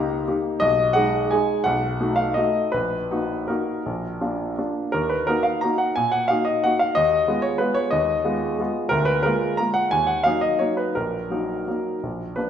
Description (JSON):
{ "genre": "classical, piano waltz", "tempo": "159-194 BPM", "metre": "3/4", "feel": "rubato", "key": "Eb minor", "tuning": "A4 = 440 Hz", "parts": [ { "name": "clear grand piano", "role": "solo", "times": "0.0-12.5 s", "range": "Bb1 to Bb5", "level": "-20 LUFS", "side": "equal", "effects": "none" } ], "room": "wet recital hall reverb, RT60 1.5 s", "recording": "minimal, uncompressed stereo recording", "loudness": "-20 LUFS", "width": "side -9 dB against mid", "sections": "0.0-4.9 A section; 4.9-12.5 B section", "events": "none", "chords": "0.0 Eb7/Db; 0.6 Abm/Cb; 1.7 B7; 2.7 Ebm/Bb; 3.8 Bb; 4.9 Ebm; 7.0 Fm7b5/Eb; 8.9 Bb7/D; 9.9 Ebm; 11.0 Ebm/Bb", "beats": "0.28 | 0.62 0.96 1.31 | 1.65 2.00 2.37 | 2.74 3.11 3.48 | 3.85 4.21 4.58 | 4.94 5.28 5.62 | 5.96 6.29 6.63 | 6.96 7.27 7.61 | 7.93 8.26 8.59 | 8.92 9.25 9.59 | 9.92 10.25 10.61 | 10.96 11.30 11.67 | 12.02 12.36" }